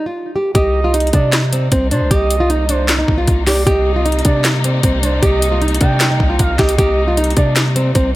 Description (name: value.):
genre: hip hop, trap.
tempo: 154 BPM.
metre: 4/4.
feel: half-time.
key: C minor.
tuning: A4 = 440 Hz.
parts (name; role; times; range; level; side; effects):
nylon-string guitar; melody; 0.0-8.1 s; C4 to G4; -18 LUFS; equal; tape echo.
warm symphonic string section; sustained chords; 0.5-8.2 s; C3 to Eb4; -25 LUFS; left 2 dB; none.
gliding portamento lead; second line; 0.6-7.6 s; C5 to G5; -22 LUFS; right 3 dB; chorus, tape echo.
long sustained 808-style bass; bass; 0.6-8.2 s; C2 to C3; -17 LUFS; equal; none.
trap drum kit; drums; 0.6-8.0 s; handclaps, hi-hat, kick drum, snare drum; -16 LUFS; equal; none.
room: digital ambience.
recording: none.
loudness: -12 LUFS.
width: side -17 dB against mid.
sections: 0.6-8.2 A section.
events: break 0.0-0.6.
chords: 0.0 N.C.; 0.6 Cm7.